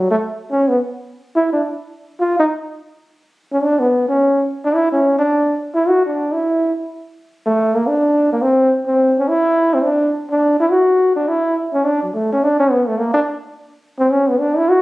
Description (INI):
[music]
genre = jazz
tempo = 212 BPM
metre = 4/4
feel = swing 60% on 8ths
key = D major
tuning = A4 = 440 Hz
[part]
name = breathy trombone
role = solo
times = 0.0-14.8 s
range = F#3 to F#4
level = -14 LUFS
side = equal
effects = none
[sound]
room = moderate large studio reverb, RT60 1.1 s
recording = recorded on a phone in the room, studio reverb, compression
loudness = -14 LUFS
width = side -19 dB against mid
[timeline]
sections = 0.0-7.3 A section; 7.3-14.8 B section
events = none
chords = none